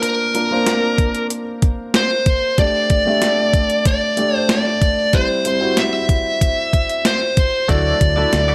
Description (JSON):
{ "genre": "1980s-style pop", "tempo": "94 BPM", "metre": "4/4", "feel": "straight", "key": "unclear", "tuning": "A4 = 440 Hz", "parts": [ { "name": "smooth overdriven lead guitar", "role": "melody", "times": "0.0-8.5 s", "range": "Bb4 to E5", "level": "-20 LUFS", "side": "equal", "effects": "digital delay" }, { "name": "dark baby grand piano", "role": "accompaniment", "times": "0.0-8.5 s", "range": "F#3 to E5", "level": "-24 LUFS", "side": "equal", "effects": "none" }, { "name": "clean 12-bit digital drum machine", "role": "drums", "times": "0.0-8.5 s", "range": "hi-hat, kick drum, snare drum", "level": "-20 LUFS", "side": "equal", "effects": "overdrive, gated reverb" }, { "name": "direct-recorded clean electric guitar", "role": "riff", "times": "7.7-8.5 s", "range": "A3 to D5", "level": "-28 LUFS", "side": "equal", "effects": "analog chorus" }, { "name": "vintage muted fingered electric bass", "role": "bass", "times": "7.7-8.5 s", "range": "D2", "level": "-21 LUFS", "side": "equal", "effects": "none" } ], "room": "light reverb, digital ambience", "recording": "none", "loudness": "-17 LUFS", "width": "mono", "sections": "0.0-8.5 A section", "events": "none", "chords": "0.0 Bbadd9; 2.6 Gsus2; 5.1 C; 7.7 Dadd9" }